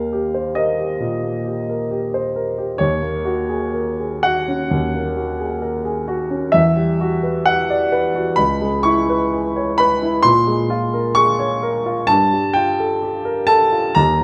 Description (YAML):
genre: classical, impressionist solo piano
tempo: 65 BPM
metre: 4/4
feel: rubato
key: unclear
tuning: A4 = 440 Hz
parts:
  - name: warm concert grand piano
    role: solo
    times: 0.0-14.2 s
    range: C#2 to C#6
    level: -18 LUFS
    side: equal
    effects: none
room: moderate recital hall reverb, RT60 1.6 s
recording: none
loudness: -18 LUFS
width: mono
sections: 0.0-14.2 A section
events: none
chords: 0.0 Eb6; 2.8 Gb69/Eb; 6.5 Em9; 8.4 C#m7; 10.2 A#m9; 12.1 Gm9